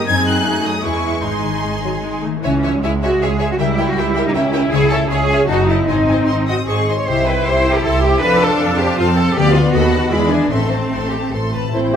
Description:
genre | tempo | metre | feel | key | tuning
classical | 146-161 BPM | 3/4 | rubato | C# minor, A minor from 7.1 s | A4 = 443 Hz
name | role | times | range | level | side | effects
clear symphonic violin section | melody | 0.0-11.7 s | D5 to G#6 | -25 LUFS | left 4 dB | none
clear symphonic violin section | second line | 0.0-12.0 s | E4 to A5 | -24 LUFS | left 1 dB | none
rich symphonic viola section | accompaniment | 0.0-12.0 s | E3 to E4 | -22 LUFS | right 1 dB | none
concert harp | arpeggios | 0.0-12.0 s | E2 to C#6 | -22 LUFS | left 9 dB | none
clear symphonic cello section | bass | 0.0-12.0 s | A2 to C#5 | -18 LUFS | right 1 dB | none
clear symphonic double bass section | bass | 0.0-12.0 s | F#1 to F#2 | -21 LUFS | right 3 dB | none
mellow clarinet | second line | 11.7-12.0 s | E4 | -21 LUFS | left 2 dB | none
mellow bassoon | accompaniment | 11.7-12.0 s | C4 | -20 LUFS | right 5 dB | none
room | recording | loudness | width
moderate concert hall reverb, RT60 2.2 s | none | -14 LUFS | side -8 dB against mid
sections
0.0-2.4 A section; 2.4-11.7 B section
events
none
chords
0.1 G#7/F#; 0.8 C#m/E; 1.2 G#; 2.4 C#m; 3.6 C#dim7; 4.7 C#m; 5.5 D#dim/F#; 5.9 G#; 7.1 C; 8.2 F; 9.4 Bdim/D; 9.7 B7/D#; 10.1 E7; 10.5 Am

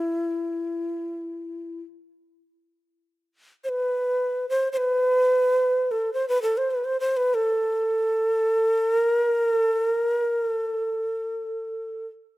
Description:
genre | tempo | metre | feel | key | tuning
japanese traditional, Japanese chamber music | free time | none | none | A hirajoshi | A4 = 445 Hz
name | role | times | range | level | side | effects
breathy mellow shakuhachi | solo | 0.0-12.1 s | E4 to C5 | -22 LUFS | equal | none
room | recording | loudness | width
light reverb | close, detailed microphones | -22 LUFS | side -18 dB against mid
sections
0.0-12.4 A section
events
none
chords
none

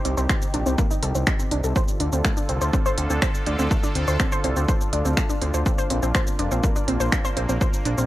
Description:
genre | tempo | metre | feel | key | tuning
melodic techno | 123 BPM | 4/4 | straight | unclear | A4 = 440 Hz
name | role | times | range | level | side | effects
sweeping resonant pad | sustained chords | 0.0-8.1 s | C3 to A4 | -30 LUFS | equal | chorus, sidechain pumping
warbly dusty pluck | arpeggios | 0.1-8.0 s | A3 to C6 | -27 LUFS | equal | chorus, sidechain pumping, analog delay
fat analog bass | bass | 0.1-8.1 s | F1 to D2 | -23 LUFS | equal | sidechain pumping
techno drum kit | drums | 0.1-8.1 s | finger snaps, hi-hat, shaker | -29 LUFS | equal | none
electronic kick drum | drums | 0.3-7.7 s | none | -23 LUFS | equal | none
room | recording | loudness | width
digital ambience | dry, gritty hardware recording | -20 LUFS | side -15 dB against mid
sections
0.0-8.1 A section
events
none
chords
0.0 Cm; 1.8 Dm; 5.7 Bb

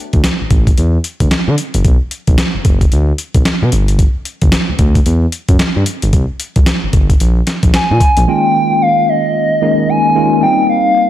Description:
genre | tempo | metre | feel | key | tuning
R&B, new jack swing | 112 BPM | 4/4 | swing 60% on 16ths | unclear | A4 = 441 Hz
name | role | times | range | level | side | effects
smooth gliding synth bass | bass | 0.1-8.3 s | F#1 to D3 | -13 LUFS | equal | none
boom bap sampler-style drum kit | drums | 0.1-8.3 s | hi-hat, kick drum, snare drum | -12 LUFS | equal | none
hollow clarinet-like synth lead | melody | 7.7-11.1 s | Eb5 to Ab5 | -12 LUFS | equal | chorus
tine electric piano | accompaniment | 8.3-11.1 s | Eb3 to F4 | -14 LUFS | left 1 dB | medium stereo tremolo, slapback echo
room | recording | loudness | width
light reverb | none | -10 LUFS | side -12 dB against mid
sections
0.0-8.3 A section; 8.3-11.1 B section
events
none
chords
0.0 D5; 1.8 Bm; 3.7 G5; 6.1 C5; 7.2 Absus2/Bb; 8.3 Eb7sus4; 10.4 Cm7

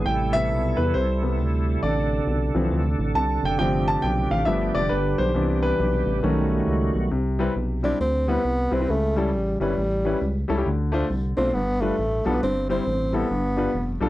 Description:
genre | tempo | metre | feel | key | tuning
uptempo gospel | 136 BPM | 4/4 | swing 62% on 8ths | C major | A4 = 440 Hz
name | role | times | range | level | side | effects
clear concert grand piano | accompaniment | 0.0-14.1 s | G2 to A5 | -25 LUFS | left 2 dB | none
bright tonewheel organ | sustained chords | 0.0-7.1 s | C3 to A4 | -26 LUFS | right 3 dB | fast rotary speaker, overdrive, chorus vibrato
rubbery square bass | bass | 0.0-14.1 s | F1 to E2 | -25 LUFS | equal | none
breathy tenor saxophone | melody | 7.8-14.0 s | G3 to D4 | -24 LUFS | equal | none
room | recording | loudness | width
little or no reverb | dry, close 1970s-style studio recording | -21 LUFS | side -16 dB against mid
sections
0.0-7.1 A section; 7.1-14.1 B section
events
grand piano solo 0.0-7.1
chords
0.1 Am7; 1.8 Dm7/A; 3.6 G7sus4; 4.5 G7; 5.4 Cmaj7; 6.2 B7; 7.1 Cmaj7; 8.9 A7; 10.7 Dm7; 11.5 G7; 12.4 C/G; 13.3 G7

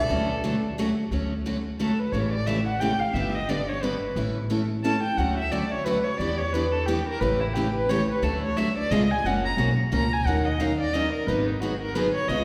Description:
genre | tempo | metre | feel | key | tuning
acoustic string swing (jazz manouche) | 177 BPM | 3/4 | swing 60% on 8ths | D major, F# major from 9.2 s | A4 = 440 Hz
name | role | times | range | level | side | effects
picked steel-string acoustic guitar | melody | 0.0-0.7 s | D5 | -31 LUFS | equal | none
warm violin | second line | 0.0-12.4 s | D#4 to A#5 | -30 LUFS | equal | none
upright bass | bass | 0.0-12.4 s | F#1 to E2 | -32 LUFS | equal | none
picked steel-string acoustic guitar | accompaniment | 0.1-12.4 s | C#3 to A#4 | -29 LUFS | equal | none
room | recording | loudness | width
wet concert hall reverb, RT60 2.4 s | recorded in a church or concert hall | -25 LUFS | mono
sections
0.0-1.1 A section; 1.1-9.2 B section; 9.2-12.4 B section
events
violin solo 1.1-12.4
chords
0.1 Dmaj7; 2.1 A7; 3.1 G; 4.2 A; 5.2 Dmaj7; 6.2 Em7; 7.2 A7; 8.2 D; 8.9 C#7; 9.2 F#maj7; 10.3 D#m7; 11.3 G#m7

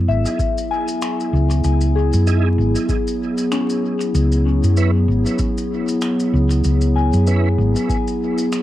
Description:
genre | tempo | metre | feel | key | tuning
ambient dub | 96 BPM | 4/4 | swing 57% on 16ths | C# minor | A4 = 440 Hz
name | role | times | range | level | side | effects
warbly tape-like pad | sustained chords | 0.0-8.6 s | F#3 to G#4 | -20 LUFS | equal | chorus, built-in reverb, cassette tape
hollow-body short-scale fingered electric bass | bass | 0.0-7.7 s | G#1 to F#2 | -16 LUFS | equal | none
soft synth bell | arpeggios | 0.1-8.6 s | C#4 to G#5 | -27 LUFS | left 9 dB | chorus, cassette tape, analog delay
shaker and finger snaps | drums | 0.3-8.6 s | none | -32 LUFS | equal | cassette tape, dub echo
electronic kick drum | drums | 0.4-8.0 s | none | -23 LUFS | equal | cassette tape
tonewheel organ | stabs | 2.3-7.5 s | C#4 to B4 | -29 LUFS | right 8 dB | chorus vibrato, fast rotary speaker, cassette tape, dub echo
room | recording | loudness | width
light reverb | home recording on cassette, vinyl crackle | -16 LUFS | side -14 dB against mid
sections
0.0-8.6 A section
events
none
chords
0.0 E; 4.1 C#m7

